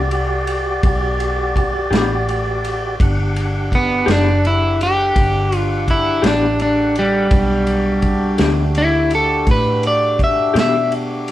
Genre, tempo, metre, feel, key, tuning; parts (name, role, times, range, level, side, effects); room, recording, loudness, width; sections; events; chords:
slow blues; 56 BPM (dotted quarters); 12/8; straight; E minor; A4 = 440 Hz
tonewheel organ; sustained chords; 0.0-11.3 s; D4 to F#5; -22 LUFS; equal; slow rotary speaker
vintage muted fingered electric bass; bass; 0.0-11.3 s; F#1 to B2; -21 LUFS; equal
vintage drum kit; drums; 0.1-11.3 s; kick drum, ride cymbal, snare drum; -21 LUFS; equal
electric guitar through a small old amp; accompaniment; 1.9-10.8 s; E3 to G4; -22 LUFS; left 4 dB; tremolo
electric guitar at the edge of break-up; melody; 3.8-10.9 s; G3 to E5; -16 LUFS; equal
moderate large studio reverb, RT60 1.1 s; band playing live in one room; -14 LUFS; side -14 dB against mid
0.0-11.3 A section
clean electric guitar solo 0.0-11.3
0.0 Em7 (rootless)